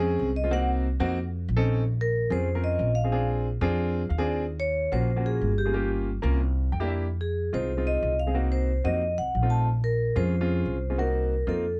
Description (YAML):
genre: Afro-Cuban jazz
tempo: 183 BPM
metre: 4/4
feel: straight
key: Bb minor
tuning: A4 = 439 Hz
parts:
  - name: warm grand piano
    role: accompaniment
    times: 0.0-11.6 s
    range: Ab3 to G5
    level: -32 LUFS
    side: equal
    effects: none
  - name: upright bass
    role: bass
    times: 0.0-11.8 s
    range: G1 to F2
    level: -29 LUFS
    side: equal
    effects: none
  - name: vibraphone with medium mallets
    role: melody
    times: 0.4-11.8 s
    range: G4 to A5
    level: -31 LUFS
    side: equal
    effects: none
room: light reverb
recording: dark, warm production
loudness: -26 LUFS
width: mono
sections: 0.0-1.8 A section; 1.8-11.8 B section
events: vibraphone solo 0.0-1.8; grand piano fill 3.9-4.4, 6.6-7.0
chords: 0.0 Bbm9 (rootless); 0.5 Cm7b5; 1.2 F7b13; 1.8 Bbm9; 3.1 Bb7; 4.4 Ebm7; 5.7 Gm7b5; 6.4 C7; 7.0 Fm7; 8.4 Cm7b5; 9.0 F7; 9.7 Bbm9; 11.0 Cm7b5